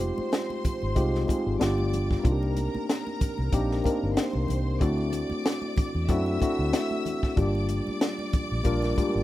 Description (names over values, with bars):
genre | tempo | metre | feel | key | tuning
lush 1970s-style soul | 94 BPM | 4/4 | swing 54% on 16ths | unclear | A4 = 440 Hz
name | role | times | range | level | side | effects
rich studio string section | second line | 0.0-9.2 s | Bb4 to E6 | -36 LUFS | right 1 dB | none
tine electric piano | accompaniment | 0.0-9.2 s | G3 to Bb4 | -28 LUFS | left 2 dB | medium stereo tremolo
vintage muted fingered electric bass | bass | 0.0-9.2 s | F1 to F#2 | -28 LUFS | equal | none
compact cocktail drum kit | drums | 0.0-9.1 s | hi-hat, kick drum, snare drum | -27 LUFS | equal | none
congas | percussion | 0.0-9.1 s | none | -41 LUFS | right 6 dB | none
room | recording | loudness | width
small room reverb | rough home demo mix | -24 LUFS | side -15 dB against mid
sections
0.0-9.2 A section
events
tine electric piano fill 9.0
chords
0.0 Fm7; 1.6 G7; 2.2 Cm7; 4.8 D7; 7.4 Gm7